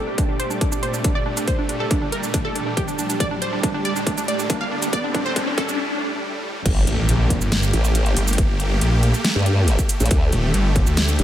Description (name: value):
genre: heavy wobble dubstep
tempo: 139 BPM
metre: 4/4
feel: half-time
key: G minor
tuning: A4 = 440 Hz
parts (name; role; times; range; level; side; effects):
- wide unison pluck; melody; 0.0-5.8 s; D4 to F5; -26 LUFS; right 2 dB; tape echo
- supersaw chords; sustained chords; 0.0-11.2 s; D2 to G4; -28 LUFS; equal; sidechain pumping
- riser and impact; sound effects; 1.9-8.4 s; none; -28 LUFS; equal; none
- granular cloud pad; texture; 0.0-5.8 s; C4 to A5; -32 LUFS; right 2 dB; built-in reverb, sidechain pumping
- dubstep drum kit; drums; 0.2-11.2 s; crash cymbal, hi-hat, shaker, snare drum; -25 LUFS; equal; none
- electronic kick drum; drums; 0.2-10.8 s; none; -22 LUFS; equal; distortion
- formant-sweep wobble bass; bass; 6.7-11.2 s; Eb1 to G2; -18 LUFS; equal; chorus, overdrive
- snarling distorted saw bass; bass; 6.9-11.2 s; Eb1 to D2; -19 LUFS; equal; overdrive
room: digital ambience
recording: high-pass filter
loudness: -18 LUFS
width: side -12 dB against mid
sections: 0.0-6.7 A section; 6.7-11.2 B section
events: build-up 0.0-6.7; filter sweep 0.0-6.7; riser 1.9-5.8; drum fill 3.2-5.8; break 5.8-6.7; drop 6.7-11.2; impact 6.7-8.4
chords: 0.0 Gmadd9; 3.2 Dsus4; 6.7 Gmadd9; 10.1 Dsus4